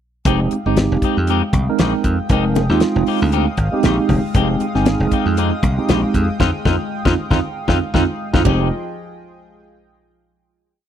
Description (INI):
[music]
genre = electric jazz fusion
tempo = 117 BPM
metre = 4/4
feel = swing 56% on 16ths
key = F minor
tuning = A4 = 440 Hz
[part]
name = chorused pulse-width pad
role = sustained chords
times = 0.2-8.7 s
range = F3 to Eb6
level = -26 LUFS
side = left 1 dB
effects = none
[part]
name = tine electric piano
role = accompaniment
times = 0.3-8.7 s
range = Ab3 to Bb4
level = -20 LUFS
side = right 5 dB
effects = medium stereo tremolo, phaser
[part]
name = clean electric guitar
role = stabs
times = 0.3-8.7 s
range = Ab3 to G4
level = -24 LUFS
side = left 15 dB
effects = wide subtle chorus
[part]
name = dry thumbed slap bass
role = bass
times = 0.3-8.7 s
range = F1 to F2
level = -18 LUFS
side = equal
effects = none
[part]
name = damped 70s drum kit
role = drums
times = 0.3-8.6 s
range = hi-hat, kick drum, ride cymbal, snare drum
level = -20 LUFS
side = equal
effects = none
[part]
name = congas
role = percussion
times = 0.3-8.7 s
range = none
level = -24 LUFS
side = left 6 dB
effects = none
[sound]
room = studio reverb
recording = dry, close 1970s-style studio recording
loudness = -15 LUFS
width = side -10 dB against mid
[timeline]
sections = 0.3-8.5 groove; 8.5-10.5 final chord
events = band accent 6.4-8.5; drum fill 7.9-8.5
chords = 0.3 Fm9